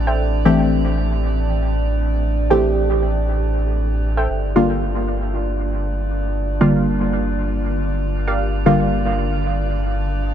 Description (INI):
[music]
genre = dub techno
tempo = 117 BPM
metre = 4/4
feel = straight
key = G dorian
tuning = A4 = 440 Hz
[part]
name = deep mellow chord stab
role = stabs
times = 0.0-10.3 s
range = D3 to G4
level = -20 LUFS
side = left 1 dB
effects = chorus, phaser, cassette tape, dub echo
[part]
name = pure sine sub bass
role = bass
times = 0.0-10.3 s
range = G1 to A1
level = -21 LUFS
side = equal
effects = none
[part]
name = metallic inharmonic drone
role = texture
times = 0.0-10.3 s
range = D4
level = -27 LUFS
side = right 3 dB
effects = chorus, built-in reverb
[part]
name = warbly dusty pluck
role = riff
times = 0.1-8.8 s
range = G4 to G5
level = -29 LUFS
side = right 2 dB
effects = chorus, vintage 12-bit sampler grit, dub echo
[sound]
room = moderate huge ambient reverb, RT60 9.2 s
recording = none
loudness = -17 LUFS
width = side -9 dB against mid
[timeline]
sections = 0.0-10.3 A section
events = none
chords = 0.0 Am7; 4.3 Gm7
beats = | 0.20 0.71 1.23 1.74 | 2.25 2.76 3.28 3.79 | 4.30 4.81 5.33 5.84 | 6.35 6.87 7.38 7.89 | 8.40 8.92 9.43 9.94